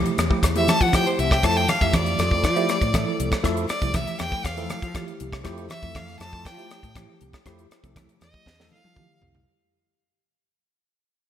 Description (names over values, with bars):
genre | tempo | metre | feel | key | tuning
electric jazz fusion | 119 BPM | 4/4 | straight | F major | A4 = 441 Hz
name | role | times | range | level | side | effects
bright tine electric piano | accompaniment | 0.0-9.4 s | F3 to A4 | -28 LUFS | equal | medium stereo tremolo, phaser
fretless electric bass | bass | 0.0-9.4 s | C2 to F3 | -27 LUFS | equal | ensemble chorus
tight funk drum kit | drums | 0.1-9.5 s | hi-hat, kick drum, rim click, snare drum, toms | -25 LUFS | equal | gated reverb
congas | percussion | 0.2-9.1 s | none | -30 LUFS | right 3 dB | none
bright violin | melody | 0.6-9.2 s | C5 to A5 | -25 LUFS | left 2 dB | none
room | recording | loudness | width
moderate lush hall reverb, RT60 2.0 s | bright 1980s-style digital production | -20 LUFS | side -10 dB against mid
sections
0.0-9.5 A section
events
fade-out 0.0-9.5; violin solo 0.0-9.5; drum fill 8.5-9.5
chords
0.0 Fmaj9